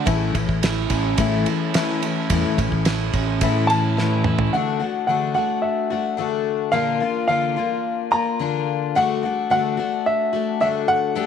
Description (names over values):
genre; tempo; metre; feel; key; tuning
folk rock and heartland rock; 108 BPM; 4/4; straight; D major; A4 = 438 Hz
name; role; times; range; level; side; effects
picked twelve-string acoustic guitar; accompaniment; 0.0-11.3 s; A2 to G4; -22 LUFS; left 8 dB; none
crunchy overdriven guitar; riff; 0.0-4.5 s; A2 to E4; -26 LUFS; right 12 dB; none
fingered electric bass; bass; 0.0-4.5 s; A1 to A2; -23 LUFS; right 2 dB; none
damped 70s drum kit; drums; 0.1-4.5 s; kick drum, ride cymbal, snare drum, toms; -24 LUFS; right 2 dB; none
warm baby grand piano; melody; 3.7-11.3 s; E5 to Bb5; -22 LUFS; right 1 dB; none
room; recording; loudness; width
light reverb; 1960s-style stereo with parts hard left and right; -19 LUFS; side -8 dB against mid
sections
0.0-4.5 A section; 4.5-11.3 B section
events
drum fill 4.0-4.5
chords
0.1 A; 4.5 D; 6.7 Bb; 9.0 D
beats
| 0.07 0.63 1.19 1.74 | 2.30 2.85 3.41 3.97 | 4.52 5.08 5.63 6.19 | 6.74 7.30 7.85 8.41 | 8.96 9.52 10.07 10.63 | 11.18